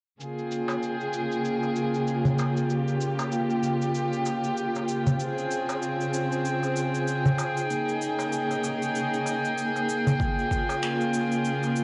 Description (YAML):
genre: organic downtempo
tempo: 96 BPM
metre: 4/4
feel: swing 58% on 16ths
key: Bb dorian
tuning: A4 = 442 Hz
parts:
  - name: dark chamber string section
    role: sustained chords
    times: 0.2-11.8 s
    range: Db3 to Ab4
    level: -29 LUFS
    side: equal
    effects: sidechain pumping, low-pass filter
  - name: electronic cabasa and finger snaps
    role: drums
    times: 0.2-11.8 s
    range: none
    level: -42 LUFS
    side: equal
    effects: overdrive, low-pass filter on perc, low-pass filter on snare
  - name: drifting glass-harmonics texture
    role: texture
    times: 0.4-11.8 s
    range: G5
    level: -35 LUFS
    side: equal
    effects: chorus, built-in reverb
  - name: darbuka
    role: percussion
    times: 0.7-11.7 s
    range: none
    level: -30 LUFS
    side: equal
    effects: none
  - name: electronic kick drum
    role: drums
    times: 10.2-10.7 s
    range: none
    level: -31 LUFS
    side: equal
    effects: overdrive
room: moderate lush hall reverb, RT60 2.0 s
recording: worn, warbling old tape, cassette tape, warbly pitch drift, nothing above 10.6 kHz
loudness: -27 LUFS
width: mono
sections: 0.2-11.8 A section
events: none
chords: 0.2 Bbm7; 5.2 Dbmaj7; 7.7 Eb7sus4; 10.2 Bbm7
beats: | 0.20 0.82 1.45 2.07 | 2.70 3.32 3.95 4.57 | 5.20 5.82 6.45 7.07 | 7.70 8.32 8.95 9.57 | 10.20 10.82 11.45